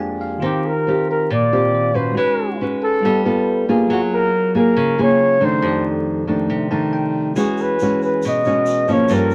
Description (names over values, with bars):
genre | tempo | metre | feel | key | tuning
bossa nova | 138 BPM | 4/4 | straight | unclear | A4 = 438 Hz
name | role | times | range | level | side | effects
bell-like tine electric piano | accompaniment | 0.0-9.3 s | Eb3 to A5 | -29 LUFS | equal | none
nylon-string guitar | accompaniment | 0.0-9.3 s | F2 to Cb5 | -21 LUFS | equal | none
mellow flugelhorn | melody | 0.4-9.3 s | Gb4 to Eb5 | -20 LUFS | equal | none
egg shaker | percussion | 7.4-9.3 s | none | -43 LUFS | equal | none
room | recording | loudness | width
light reverb | vinyl crackle | -18 LUFS | mono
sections
0.4-9.3 A section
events
tine electric piano fill 0.0-0.4, 6.5-7.4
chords
0.4 Eb69; 2.2 Abm7; 3.0 G9; 3.9 Gbmaj9; 5.6 F13; 7.4 E69